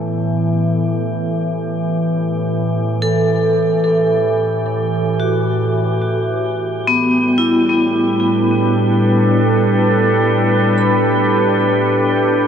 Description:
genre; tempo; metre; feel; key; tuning
ambient; free time; none; none; unclear; A4 = 443 Hz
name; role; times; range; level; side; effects
evolving wavetable pad; sustained chords; 0.0-12.5 s; A2 to B4; -16 LUFS; equal; chorus, built-in reverb
vibraphone with hard mallets; arpeggios; 0.0-12.5 s; B3 to B5; -18 LUFS; equal; analog delay
drifting glass-harmonics texture; texture; 0.2-12.5 s; G4; -28 LUFS; right 3 dB; chorus, built-in reverb
room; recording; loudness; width
wet huge ambient reverb, RT60 8.6 s; dreamy mix soaked in reverb, cassette tape; -14 LUFS; side -8 dB against mid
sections
0.0-12.5 A section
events
fade-in on synth texture 0.0-12.5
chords
0.0 A5; 6.2 G/A

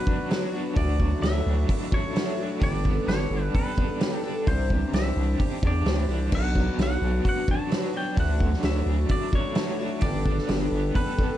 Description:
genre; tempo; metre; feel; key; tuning
folk rock and heartland rock; 130 BPM; 4/4; straight; D major; A4 = 441 Hz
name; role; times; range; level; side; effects
twangy electric guitar; melody; 0.0-11.4 s; B4 to A5; -34 LUFS; right 1 dB; none
picked twelve-string acoustic guitar; accompaniment; 0.0-11.4 s; B2 to A4; -33 LUFS; left 5 dB; plate reverb
pedal harmonium; sustained chords; 0.0-11.4 s; B3 to C5; -38 LUFS; right 2 dB; none
crunchy overdriven guitar; riff; 0.0-11.4 s; B2 to A4; -33 LUFS; right 1 dB; tremolo
loose indie drum kit; drums; 0.1-11.3 s; crash cymbal, hi-hat, kick drum, snare drum; -26 LUFS; equal; none
growling FM bass; bass; 0.8-10.9 s; G1 to E2; -25 LUFS; equal; none
room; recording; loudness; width
light reverb; dark, warm production; -22 LUFS; side -12 dB against mid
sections
0.0-11.4 A section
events
none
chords
0.0 Bm; 0.8 Dadd9; 2.6 Gadd9; 4.5 Cadd9; 6.3 Bm; 8.2 Dadd9; 10.0 Gadd9

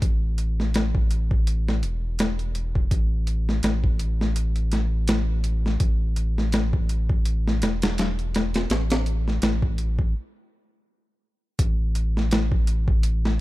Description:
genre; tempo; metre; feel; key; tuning
trip hop; 83 BPM; 4/4; swing 57% on 16ths; unclear; A4 = 440 Hz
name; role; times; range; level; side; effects
round analog bass; bass; 0.0-13.4 s; E1 to A1; -24 LUFS; equal; none
boom bap sampler-style drum kit; drums; 0.0-13.4 s; hi-hat, kick drum, snare drum; -23 LUFS; equal; overdrive
room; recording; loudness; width
little or no reverb; none; -21 LUFS; side -18 dB against mid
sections
0.0-11.6 A section; 11.6-13.4 B section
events
stop 10.1-11.6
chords
none

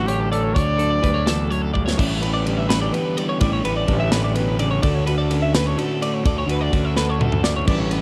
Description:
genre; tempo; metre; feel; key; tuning
math rock and midwest emo; 84 BPM (dotted quarters); 6/8; straight; D major; A4 = 441 Hz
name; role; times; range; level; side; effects
clear trumpet; melody; 0.0-1.5 s; G4 to D5; -26 LUFS; equal; cassette tape
twelve-string electric guitar; accompaniment; 0.0-8.0 s; D2 to A4; -28 LUFS; equal; spring reverb, cassette tape
twelve-string electric guitar; arpeggios; 0.0-8.0 s; A4 to E5; -29 LUFS; equal; analog chorus, cassette tape, analog delay
crunchy overdriven guitar; riff; 0.0-8.0 s; D3 to G4; -31 LUFS; equal; cassette tape
fuzz fingered electric bass; bass; 0.0-8.0 s; A1 to D2; -25 LUFS; equal; overdrive
modern studio drum kit; drums; 0.1-8.0 s; crash cymbal, hi-hat, kick drum, ride cymbal, snare drum, toms; -26 LUFS; equal; cassette tape
room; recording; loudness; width
light reverb; home recording on cassette; -20 LUFS; mono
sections
0.0-2.0 A section; 2.0-8.0 B section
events
drum fill 1.7, 7.0-7.7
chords
0.0 Dmaj7; 2.0 A9sus4; 4.8 Dmaj7

